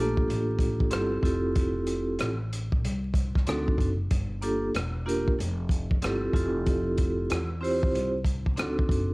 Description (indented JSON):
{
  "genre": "hip hop, jazz-hop",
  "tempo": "94 BPM",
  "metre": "4/4",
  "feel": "swing 64% on 16ths",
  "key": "G dorian",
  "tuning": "A4 = 440 Hz",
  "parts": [
    { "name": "vibraphone with medium mallets", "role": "accompaniment", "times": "0.0-9.1 s", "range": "Bb3 to C5", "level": "-28 LUFS", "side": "right 1 dB", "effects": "cassette tape" },
    { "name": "upright bass", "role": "bass", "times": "0.0-9.1 s", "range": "E1 to E2", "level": "-31 LUFS", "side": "equal", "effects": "none" },
    { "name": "crunchy breakbeat drum kit", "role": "drums", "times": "0.2-9.1 s", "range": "hi-hat, kick drum, rim click", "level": "-28 LUFS", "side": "equal", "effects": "none" }
  ],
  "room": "light reverb",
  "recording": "home recording on cassette, vinyl crackle",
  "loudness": "-25 LUFS",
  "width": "side -25 dB against mid",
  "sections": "0.0-9.1 A section",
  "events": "none",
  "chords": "0.0 Gm9; 1.2 Fmaj7; 3.5 D7b9; 4.1 Gm9; 6.3 Fmaj7; 8.6 D7b9",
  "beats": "0.28 0.92 | 1.56 2.19 2.83 3.47 | 4.11 4.75 5.39 6.02 | 6.66 7.30 7.94 8.58"
}